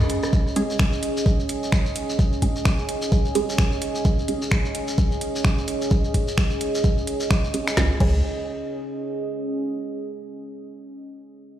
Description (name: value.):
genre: minimal techno.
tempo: 129 BPM.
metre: 4/4.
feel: swing 59% on 16ths.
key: unclear.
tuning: A4 = 441 Hz.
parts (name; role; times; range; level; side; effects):
rubbery square bass; bass; 0.0-0.1, 7.8-8.2 s; B1 to C#2; -21 LUFS; equal; sidechain pumping.
shekere; percussion; 0.0-7.8 s; none; -35 LUFS; left 2 dB; none.
deep dark ambient pad; texture; 0.0-9.6 s; C#4 to D#5; -27 LUFS; right 2 dB; chorus, built-in reverb, sidechain pumping.
garage drum kit; drums; 0.1-8.1 s; crash cymbal, finger snaps, hi-hat, snare drum; -29 LUFS; equal; overdrive.
electronic kick drum; drums; 0.3-8.1 s; none; -20 LUFS; equal; overdrive.
filtered dub chord stab; stabs; 0.6-4.4, 7.5-8.2 s; G#3 to G#4; -27 LUFS; right 4 dB; phaser, analog chorus, digital delay.
room: moderate lush hall reverb, RT60 2.3 s.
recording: played on a big sound system in a bare room, stone room reverb.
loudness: -20 LUFS.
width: side -11 dB against mid.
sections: 0.0-7.8 A section; 7.8-9.6 B section.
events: filter sweep on synth stab 0.0-7.8.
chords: 0.0 C#5.